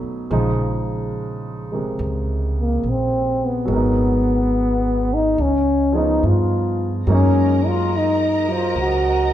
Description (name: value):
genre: jazz ballad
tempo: 71 BPM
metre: 4/4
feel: swing 66% on 8ths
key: unclear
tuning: A4 = 442 Hz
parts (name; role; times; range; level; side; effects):
- warm grand piano; accompaniment; 0.0-9.3 s; C3 to C5; -25 LUFS; right 2 dB; none
- upright bass; bass; 0.0-9.3 s; Ab1 to G2; -22 LUFS; right 1 dB; none
- breathy trombone; melody; 2.6-9.3 s; Bb3 to Gb4; -19 LUFS; left 1 dB; none
- dark symphonic string section; sustained chords; 7.1-9.3 s; Bb4 to Bb5; -27 LUFS; right 1 dB; none
room: moderate recital hall reverb, RT60 1.7 s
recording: recorded in a church or concert hall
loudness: -17 LUFS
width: side -11 dB against mid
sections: 0.0-9.3 A section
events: none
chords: 0.3 Bbm11; 3.7 Abm7; 5.4 Db7; 7.1 Gb6